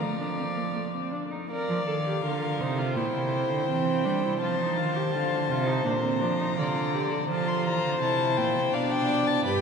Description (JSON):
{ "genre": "classical, baroque-style fugue for string quartet", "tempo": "83 BPM", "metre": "4/4", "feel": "straight", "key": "Bb major", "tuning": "A4 = 440 Hz", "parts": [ { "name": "warm violin", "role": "melody", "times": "0.0-9.6 s", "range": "F5 to C6", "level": "-32 LUFS", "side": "left 7 dB", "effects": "none" }, { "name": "dark violin", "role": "second line", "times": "0.0-9.6 s", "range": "Bb4 to D5", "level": "-30 LUFS", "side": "left 2 dB", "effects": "none" }, { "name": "rich viola", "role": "accompaniment", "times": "0.0-9.6 s", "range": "A3 to Bb4", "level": "-31 LUFS", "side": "right 1 dB", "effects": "none" }, { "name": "rich cello", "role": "bass", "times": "0.0-9.6 s", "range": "G2 to G3", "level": "-29 LUFS", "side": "right 4 dB", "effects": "none" } ], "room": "wet cathedral reverb, RT60 6.3 s", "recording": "none", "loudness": "-24 LUFS", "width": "side -6 dB against mid", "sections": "0.0-1.5 A section; 1.5-9.6 B section", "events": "none", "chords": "0.0 F; 1.5 Bb; 3.0 C7/Bb; 4.4 F; 5.9 Bb; 7.3 F; 8.7 G7/B", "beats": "0.01 0.76 | 1.51 2.24 2.96 3.69 | 4.42 5.14 5.86 6.58 | 7.30 8.02 8.74 9.46" }